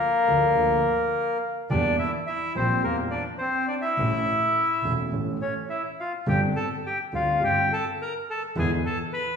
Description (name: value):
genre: tango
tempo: 105 BPM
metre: 4/4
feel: rubato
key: unclear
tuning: A4 = 440 Hz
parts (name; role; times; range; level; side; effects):
- bandoneon; melody; 0.0-9.4 s; Bb3 to B5; -24 LUFS; left 1 dB; none
- warm concert grand piano; accompaniment; 0.3-8.8 s; E1 to A4; -30 LUFS; equal; none
- rich double bass; bass; 0.3-8.8 s; E1 to E2; -31 LUFS; right 1 dB; none
room: wet recital hall reverb, RT60 1.4 s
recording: recorded in a church or concert hall, studio reverb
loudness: -22 LUFS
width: side -6 dB against mid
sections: 0.0-9.4 A section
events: none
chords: 0.0 Bbmaj7/D; 1.7 Edim; 4.0 A; 6.3 Gsus4; 8.6 E7